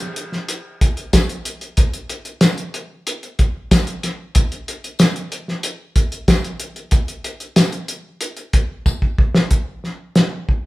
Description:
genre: rock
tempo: 93 BPM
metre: 4/4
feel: straight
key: none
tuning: none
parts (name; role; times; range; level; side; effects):
- cloth-damped thuddy drum kit; drums; 0.0-10.6 s; hi-hat, kick drum, snare drum; -16 LUFS; equal; none
- tambourine; percussion; 1.1-9.0 s; none; -32 LUFS; left 4 dB; none
room: moderate large studio reverb, RT60 0.9 s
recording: band playing live in one room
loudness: -17 LUFS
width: side -19 dB against mid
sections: 0.0-9.5 A section; 9.5-10.7 B section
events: drum fill 8.9-9.5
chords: none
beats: 0.49 1.14 | 1.78 2.42 3.06 3.71 | 4.35 4.99 5.64 6.28 | 6.93 7.57 8.22 8.87 | 9.52 10.17

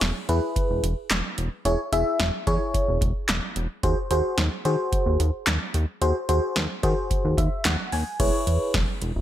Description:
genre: synth-pop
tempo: 110 BPM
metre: 4/4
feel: straight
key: E major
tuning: A4 = 443 Hz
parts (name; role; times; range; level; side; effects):
- FM electric piano; accompaniment; 0.0-8.8 s; E4 to G#5; -26 LUFS; left 1 dB; chorus
- chorused synth bass; bass; 0.0-9.2 s; E1 to D#3; -24 LUFS; equal; none
- electro analog drum machine; drums; 0.0-9.1 s; crash cymbal, handclaps, hi-hat, kick drum, snare drum; -26 LUFS; equal; gated reverb
room: light reverb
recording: none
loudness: -22 LUFS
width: side -12 dB against mid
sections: 0.0-8.2 A section; 8.2-9.2 B section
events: FM electric piano fill 7.1-8.2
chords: 0.0 E6; 3.8 G#7/D#; 8.2 E6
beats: 0.02 0.56 1.11 | 1.65 2.20 2.74 3.29 | 3.83 4.38 4.92 5.47 | 6.02 6.56 7.11 7.65 | 8.20 8.74

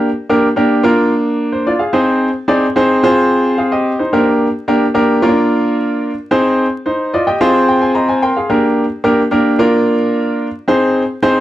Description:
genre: soul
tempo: 110 BPM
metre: 4/4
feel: straight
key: unclear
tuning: A4 = 440 Hz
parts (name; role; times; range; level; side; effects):
- clear baby grand piano; solo; 0.0-11.4 s; Bb3 to C6; -11 LUFS; equal; none
room: wet studio ambience, RT60 0.5 s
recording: vinyl crackle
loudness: -11 LUFS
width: side -14 dB against mid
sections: 0.0-11.4 A section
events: grand piano fill 6.9-8.5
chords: 0.0 Gm; 0.8 Bb; 1.9 Ab; 3.0 Fm; 4.1 Gm; 5.2 Bb; 6.3 Ab; 7.4 Fm; 8.5 Gm; 9.6 Bb; 10.7 Ab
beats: 0.29 0.84 1.39 | 1.94 2.49 3.04 3.58 | 4.13 4.68 5.22 5.77 | 6.32 6.86 7.41 7.96 | 8.50 9.05 9.59 10.14 | 10.69 11.23

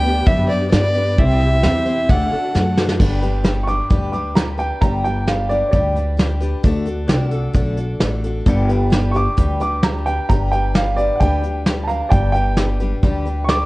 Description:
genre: honky-tonk and classic country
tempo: 132 BPM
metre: 4/4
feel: straight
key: G major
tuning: A4 = 439 Hz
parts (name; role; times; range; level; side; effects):
- dark fiddle; melody; 0.0-2.8 s; D5 to G5; -20 LUFS; equal; none
- picked steel-string acoustic guitar; accompaniment; 0.0-13.7 s; G2 to C5; -24 LUFS; left 2 dB; none
- pedal steel guitar; sustained chords; 0.0-13.7 s; G4 to G5; -32 LUFS; right 1 dB; none
- warm studio string section; sustained chords; 0.0-3.0 s; C3 to A4; -29 LUFS; equal; none
- upright bass; bass; 0.0-13.7 s; G1 to G2; -20 LUFS; equal; none
- soft brush drum kit; drums; 0.3-13.6 s; crash cymbal, hi-hat, kick drum, snare drum; -17 LUFS; equal; vintage 12-bit sampler grit
- warm upright piano; second line; 3.6-6.2, 9.1-13.7 s; C#5 to D6; -21 LUFS; right 2 dB; none
room: light reverb, studio reverb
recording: worn, warbling old tape, cassette tape, warbly pitch drift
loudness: -15 LUFS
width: side -20 dB against mid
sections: 0.0-3.0 A section; 3.0-13.7 B section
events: drum fill 2.5-3.0; upright piano solo 3.0-13.7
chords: 0.0 G; 1.2 C; 2.1 D; 3.0 G; 6.6 D; 8.5 G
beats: 0.26 0.72 | 1.17 1.63 2.08 2.54 | 2.99 3.45 3.90 4.36 | 4.82 5.27 5.73 6.19 | 6.64 7.10 7.55 8.01 | 8.47 8.92 9.38 9.84 | 10.29 10.75 11.21 11.66 | 12.12 12.58 13.03 13.49

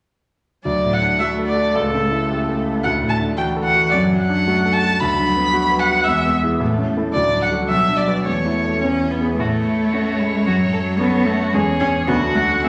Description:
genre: quick classical-period movement for piano quartet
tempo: 111 BPM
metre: 2/4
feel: rubato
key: D major, A major from 5.0 s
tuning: A4 = 440 Hz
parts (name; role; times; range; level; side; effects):
- rich violin; melody; 0.6-12.7 s; A4 to B5; -22 LUFS; equal; none
- rich cello; second line; 0.6-12.7 s; E3 to C#4; -24 LUFS; equal; none
- clear concert grand piano; accompaniment; 0.7-12.7 s; B1 to C#5; -23 LUFS; equal; none
- rich violin; second line; 9.4-12.7 s; E4 to A4; -27 LUFS; equal; none
room: wet scoring stage reverb, RT60 1.6 s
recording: none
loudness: -18 LUFS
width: mono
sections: 0.7-9.4 A section; 9.4-12.7 B section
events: none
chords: 0.7 D; 1.8 A7/C#; 2.8 D; 3.9 D/F#; 5.0 Bm/D; 6.1 E; 6.6 A; 7.1 D; 7.7 Bm; 8.3 A/E; 8.8 E; 9.4 A; 10.5 F#m; 11.5 C#m/E; 12.1 D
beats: | 0.66 1.20 | 1.75 2.30 | 2.84 3.38 | 3.92 4.46 | 4.99 5.53 | 6.07 6.60 | 7.14 7.69 | 8.26 8.83 | 9.39 9.94 | 10.48 11.01 | 11.54 12.08 | 12.64

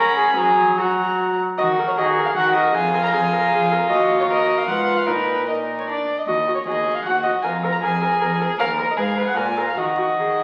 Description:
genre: quick classical-period movement for string quartet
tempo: 154 BPM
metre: 3/4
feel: rubato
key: Eb minor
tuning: A4 = 440 Hz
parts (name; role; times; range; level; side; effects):
- dark violin; melody; 0.0-10.4 s; Bb4 to A#5; -24 LUFS; equal; none
- warm violin; second line; 0.0-10.4 s; F4 to B5; -26 LUFS; equal; none
- rich viola; accompaniment; 0.0-10.4 s; F#3 to Cb5; -26 LUFS; equal; none
- dark cello; bass; 0.0-10.4 s; Eb2 to G#4; -27 LUFS; equal; none
room: wet recital hall reverb, RT60 1.3 s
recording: very old 78 rpm record, vinyl crackle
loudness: -20 LUFS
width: mono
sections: 0.0-1.6 A section; 1.6-10.4 B section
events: none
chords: 0.4 F#; 1.6 Ebm; 2.8 Bb5/F; 3.9 Ebm; 4.7 Fdim/Ab; 5.1 Eb5/Bb; 5.9 Bb; 6.3 Ebm; 7.4 Bb5/F; 8.6 Eb5; 9.0 Fdim/Ab; 9.4 Bb5; 9.8 Ebm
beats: | 0.38 0.78 1.19 | 1.59 1.98 2.37 | 2.75 3.15 3.53 | 3.91 4.30 4.68 | 5.08 5.48 5.88 | 6.27 6.67 7.05 | 7.44 7.82 8.21 | 8.60 8.97 9.36 | 9.77 10.18

